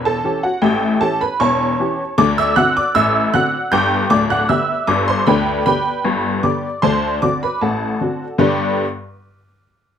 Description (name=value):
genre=ragtime piano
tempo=77 BPM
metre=2/4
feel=straight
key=G major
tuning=A4 = 437 Hz
part: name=honky-tonk upright piano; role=solo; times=0.0-8.8 s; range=D1 to G6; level=-15 LUFS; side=equal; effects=none
room=moderate studio ambience, RT60 0.5 s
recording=none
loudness=-15 LUFS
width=side -8 dB against mid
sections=0.0-8.4 A section; 8.4-10.0 B section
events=none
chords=0.0 A7; 2.2 D7; 3.7 G; 5.3 G/D; 6.8 D7; 8.4 G